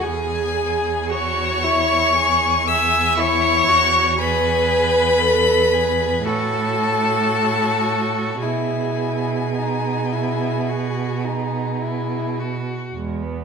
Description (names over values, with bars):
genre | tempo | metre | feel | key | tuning
classical, slow romantic movement for string quartet | 52-60 BPM | 4/4 | rubato | C# minor, E major from 4.2 s | A4 = 440 Hz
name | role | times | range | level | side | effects
rich violin | melody | 0.0-12.3 s | G#5 to E6 | -21 LUFS | left 6 dB | none
rich violin | second line | 0.0-12.9 s | D#4 to A4 | -25 LUFS | left 3 dB | none
rich viola | accompaniment | 0.0-13.4 s | G#3 to E5 | -22 LUFS | right 2 dB | none
rich cello | bass | 0.0-13.4 s | E2 to B2 | -24 LUFS | right 5 dB | none
room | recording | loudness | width
wet recital hall reverb, RT60 1.7 s | minimal, uncompressed stereo recording | -17 LUFS | side -6 dB against mid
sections
0.0-12.9 A section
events
none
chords
0.0 C#m/E; 4.2 E; 6.3 F#m/A; 8.4 E/B; 12.9 E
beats
| 0.02 1.11 2.16 3.19 | 4.20 5.23 6.26 7.32 | 8.42 9.55 10.70 11.82 | 12.94